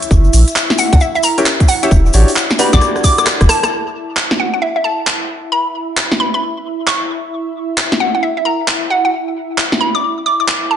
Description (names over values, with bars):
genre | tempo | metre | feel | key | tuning
UK garage, two-step garage | 133 BPM | 4/4 | swing 63% on 16ths | unclear | A4 = 440 Hz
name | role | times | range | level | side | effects
hollow square pluck | melody | 0.0-10.8 s | E5 to D6 | -17 LUFS | equal | chorus, dub echo
warm analog pad | sustained chords | 0.0-10.8 s | E4 to E5 | -23 LUFS | right 1 dB | chorus, sidechain pumping
clear grand piano | stabs | 0.0-3.7 s | C#4 to E5 | -19 LUFS | left 1 dB | dub echo
garage drum kit | drums | 0.0-10.6 s | handclaps, hi-hat, rim click, snare drum | -16 LUFS | right 1 dB | none
tube shaker | percussion | 0.0-3.7 s | none | -25 LUFS | left 7 dB | dub echo
saturated sub bass | bass | 0.1-3.5 s | E1 to C#2 | -10 LUFS | equal | sidechain pumping
electronic kick drum | drums | 0.1-3.5 s | none | -13 LUFS | equal | none
room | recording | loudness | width
light reverb | echo-heavy mix, nothing above 10.9 kHz | -12 LUFS | side -9 dB against mid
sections
0.0-3.7 A section; 3.7-10.8 B section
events
drum fill 2.8-3.7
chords
0.1 F#7(no3); 1.9 Em9; 3.7 N.C.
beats
| 0.11 0.56 1.01 1.46 | 1.91 2.36 2.81 3.27 | 3.72 4.17 4.62 5.07 | 5.52 5.97 6.42 6.88 | 7.33 7.78 8.23 8.68 | 9.13 9.58 10.03 10.48